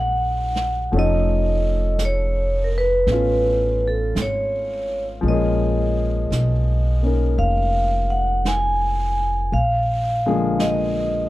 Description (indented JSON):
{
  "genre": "jazz ballad",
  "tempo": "56 BPM",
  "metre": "4/4",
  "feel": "swing 67% on 8ths",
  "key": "unclear",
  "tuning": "A4 = 439 Hz",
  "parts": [
    { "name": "vibraphone with medium hard mallets", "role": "melody", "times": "0.0-11.3 s", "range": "A4 to G#5", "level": "-22 LUFS", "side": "right 1 dB", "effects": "none" },
    { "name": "warm upright piano", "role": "accompaniment", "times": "0.0-11.3 s", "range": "D3 to A#4", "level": "-25 LUFS", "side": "left 4 dB", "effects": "none" },
    { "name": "upright bass", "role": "bass", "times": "0.0-11.3 s", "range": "F1 to B1", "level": "-22 LUFS", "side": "equal", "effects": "none" },
    { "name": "jazz brush drum kit", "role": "drums", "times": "0.6-11.3 s", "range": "brushed snare drum, hi-hat, snare drum", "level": "-33 LUFS", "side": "right 2 dB", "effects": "none" }
  ],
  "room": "little or no reverb",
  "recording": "dark, warm production",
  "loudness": "-18 LUFS",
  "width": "side -16 dB against mid",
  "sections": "0.0-11.3 A section",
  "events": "none",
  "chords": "0.0 D#m7; 0.9 F7alt; 5.2 A#m7; 9.5 A#7"
}